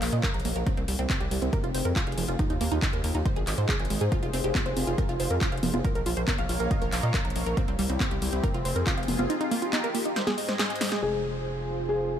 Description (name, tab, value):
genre	uplifting trance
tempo	139 BPM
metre	4/4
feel	straight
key	F minor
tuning	A4 = 440 Hz
part	lush unison pad	sustained chords	0.0-12.2 s	Ab3 to F5	-33 LUFS	equal	chorus, phaser, sidechain pumping
part	wide unison pluck	arpeggios	0.0-11.0 s	F3 to Bb5	-32 LUFS	right 3 dB	sidechain pumping, ping-pong delay
part	gritty driven synth bass	bass	0.0-12.2 s	F1 to Bb2	-30 LUFS	equal	sidechain pumping
part	big-room dance drum kit	drums	0.0-11.0 s	congas, handclaps, hi-hat, snare drum	-32 LUFS	left 1 dB	studio reverb
part	electronic kick drum	drums	0.2-9.0 s	none	-28 LUFS	equal	studio reverb
part	felt-muted upright piano	second line	11.0-12.2 s	Ab4	-29 LUFS	left 3 dB	digital delay
room	digital ambience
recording	none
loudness	-24 LUFS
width	side -9 dB against mid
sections	0.0-11.0 A section; 11.0-12.2 B section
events	filter sweep on analog synth pad 0.0-11.0, 11.0-12.2; drum fill 10.2-11.0; band accent 10.9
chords	0.0 Bbm; 0.7 C; 1.5 Fm; 2.4 Ebadd9; 3.3 Ab; 4.1 Fm; 5.8 Bbm; 7.6 C; 8.4 Fm; 9.3 Ebadd9; 10.2 Ab; 11.0 Fm